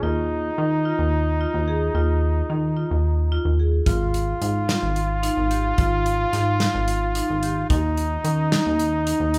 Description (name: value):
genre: progressive instrumental, band music in an uneven meter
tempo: 219 BPM (eighths)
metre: 7/8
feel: straight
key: unclear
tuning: A4 = 440 Hz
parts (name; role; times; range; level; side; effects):
- warm flugelhorn; second line; 0.0-9.4 s; Eb4 to F4; -28 LUFS; equal; none
- marimba with hard mallets; arpeggios; 0.0-9.4 s; Db4 to Ab4; -29 LUFS; equal; none
- plucky analog bass; bass; 0.0-9.4 s; Ab1 to Eb3; -25 LUFS; equal; none
- natural country drum kit; drums; 3.9-9.4 s; hi-hat, kick drum, snare drum; -27 LUFS; equal; none
room: moderate large studio reverb, RT60 1.2 s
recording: band playing live in one room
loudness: -22 LUFS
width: mono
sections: 0.0-9.4 A section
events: none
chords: 0.0 Ebsus2; 3.9 Ab5; 7.7 N.C.